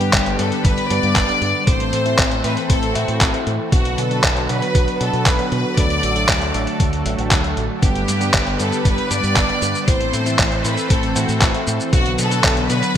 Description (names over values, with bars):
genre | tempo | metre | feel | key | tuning
italo disco | 117 BPM | 4/4 | straight | G major | A4 = 440 Hz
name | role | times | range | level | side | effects
clear studio violin section | melody | 0.0-13.0 s | F#4 to D5 | -22 LUFS | equal | ping-pong delay
lush unison pad | sustained chords | 0.0-13.0 s | D3 to C5 | -24 LUFS | equal | chorus, phaser
tine electric piano | stabs | 0.0-13.0 s | F#3 to C5 | -25 LUFS | left 1 dB | phaser, low-pass filter
fingered electric bass with an envelope filter | bass | 0.0-12.8 s | G1 to B2 | -23 LUFS | equal | none
dusty soul sampler-style drum kit | drums | 0.0-12.9 s | cabasa, handclaps, hi-hat | -21 LUFS | equal | overdrive, gated reverb
electronic kick drum | drums | 0.1-12.5 s | none | -18 LUFS | equal | none
room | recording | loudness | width
moderate plate reverb, RT60 2.1 s | bright 1980s-style digital production | -15 LUFS | side -9 dB against mid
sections
0.0-13.0 A section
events
filter sweep on tine electric piano 0.0-13.0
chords
0.0 G; 1.7 Am; 3.7 Bm; 5.8 D; 7.8 G; 9.9 Am; 11.9 Bm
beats
0.13 0.65 1.16 | 1.67 2.19 2.70 3.21 | 3.72 4.24 4.75 5.26 | 5.77 6.29 6.80 7.31 | 7.83 8.34 8.85 9.36 | 9.88 10.39 10.90 11.41 | 11.93 12.44 12.95